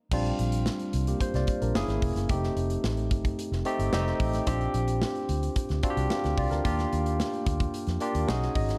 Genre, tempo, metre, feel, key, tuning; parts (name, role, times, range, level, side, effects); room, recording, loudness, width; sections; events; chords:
polished 1980s jazz-funk pop; 110 BPM; 4/4; straight; Bb major; A4 = 440 Hz
barky tine electric piano; accompaniment; 0.1-8.8 s; G3 to F#5; -32 LUFS; equal; overdrive, subtle chorus
vintage muted fingered electric bass; bass; 0.1-8.7 s; Fb1 to F2; -31 LUFS; equal
modern studio drum kit; drums; 0.1-8.8 s; crash cymbal, hi-hat, kick drum, snare drum; -34 LUFS; equal
light reverb, studio ambience; dark, warm production; -28 LUFS; mono
0.1-8.8 A section
tine electric piano fill 8.0-8.8
0.1 Bb69; 1.8 Gb9; 2.3 F9; 4.5 Bb69; 6.7 Ebmaj7